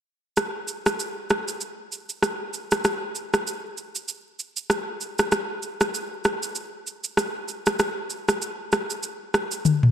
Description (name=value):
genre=afrobeats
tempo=97 BPM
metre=4/4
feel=swing 58% on 16ths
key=none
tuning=none
part: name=afro-pop drum kit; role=drums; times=0.4-9.9 s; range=rim click, shaker, toms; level=-23 LUFS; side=equal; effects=none
room=moderate lush hall reverb, RT60 1.8 s, digital ambience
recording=dark, warm production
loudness=-24 LUFS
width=side -9 dB against mid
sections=0.4-9.9 A section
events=drum fill 9.7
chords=none